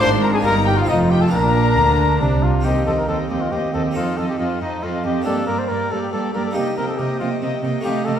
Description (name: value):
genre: classical, baroque-style concerto movement with solo episodes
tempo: 138 BPM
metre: 3/4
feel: straight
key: unclear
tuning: A4 = 441 Hz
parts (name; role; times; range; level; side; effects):
- clear trumpet; melody; 0.0-8.2 s; D4 to C5; -23 LUFS; left 1 dB; none
- warm chamber violin section; melody; 0.0-8.2 s; Eb5 to C6; -31 LUFS; left 6 dB; none
- warm chamber violin section; second line; 0.0-8.2 s; D5 to C6; -26 LUFS; left 3 dB; none
- dark chamber viola section; accompaniment; 0.0-8.2 s; A3 to F4; -25 LUFS; right 2 dB; none
- harpsichord; accompaniment; 0.0-8.2 s; Eb2 to Bb4; -26 LUFS; right 1 dB; none
- rich chamber cello section; bass; 0.0-8.1 s; Eb2 to D3; -24 LUFS; right 2 dB; none
- warm studio double bass section; bass; 0.0-2.6 s; F1 to D2; -21 LUFS; right 1 dB; none
room: wet recital hall reverb, RT60 1.3 s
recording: heard from further back in the room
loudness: -17 LUFS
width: side -9 dB against mid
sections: 0.0-2.6 A section; 2.6-8.2 B section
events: none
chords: 0.0 Bb7/Ab; 0.5 Eb/G; 0.9 F7; 1.3 Bb; 2.6 Cm/Eb; 4.0 F7; 5.3 Gm; 6.6 Cm7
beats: | 0.02 0.45 0.89 | 1.33 1.77 2.21 | 2.65 3.09 3.52 | 3.96 4.39 4.83 | 5.26 5.70 6.13 | 6.56 6.99 7.42 | 7.85